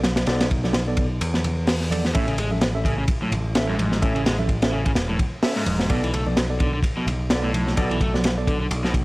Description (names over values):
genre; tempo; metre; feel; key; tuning
breakbeat, breaks; 128 BPM; 4/4; swing 57% on 16ths; B dorian; A4 = 441 Hz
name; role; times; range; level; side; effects
overdriven picked electric bass; bass; 0.0-9.0 s; E1 to E2; -25 LUFS; equal; none
crunchy breakbeat drum kit; drums; 0.0-9.0 s; hi-hat, kick drum, ride cymbal, snare drum; -23 LUFS; equal; none
congas; percussion; 0.0-9.0 s; none; -30 LUFS; right 1 dB; none
tine electric piano; stabs; 0.3-8.6 s; B3 to E5; -29 LUFS; right 1 dB; medium stereo tremolo, tape echo
overdriven electric guitar; riff; 2.1-8.9 s; G#2 to A3; -28 LUFS; equal; tape echo
room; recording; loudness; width
small room ambience; dry, gritty hardware recording, transformer saturation, vinyl crackle; -20 LUFS; side -22 dB against mid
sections
0.0-9.0 A section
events
none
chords
0.0 Bm7; 2.1 A; 5.9 Bm7